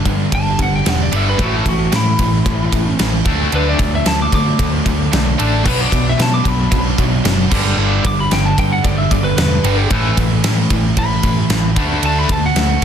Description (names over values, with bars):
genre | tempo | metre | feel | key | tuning
hard rock | 113 BPM | 4/4 | straight | unclear | A4 = 440 Hz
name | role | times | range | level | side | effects
cranked stack guitar | riff | 0.0-12.8 s | G2 to D4 | -23 LUFS | left 10 dB | overdrive, tremolo
sludgy distorted guitar | riff | 0.0-12.8 s | G2 to F#4 | -22 LUFS | equal | overdrive
tight distorted guitar | riff | 0.0-12.8 s | G2 to D4 | -21 LUFS | right 10 dB | distortion
picked electric bass | bass | 0.1-12.8 s | E1 to D3 | -19 LUFS | equal | none
gated 80s drum kit | drums | 0.1-12.8 s | crash cymbal, kick drum, ride cymbal, snare drum | -18 LUFS | equal | none
lightly driven lead guitar | melody | 0.3-12.8 s | E4 to D6 | -22 LUFS | equal | analog delay
room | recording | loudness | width
small room ambience | dense, heavily limited modern master | -13 LUFS | side -8 dB against mid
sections
0.0-12.8 A section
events
lead electric guitar solo 0.0-12.8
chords
0.0 G; 1.4 A; 3.3 D; 5.7 Bm; 7.5 G; 9.9 A; 11.8 D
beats
0.33 0.86 | 1.39 1.92 2.46 2.99 | 3.52 4.05 4.59 5.12 | 5.65 6.18 6.72 7.25 | 7.78 8.31 8.84 9.38 | 9.91 10.44 10.97 11.50 | 12.03 12.56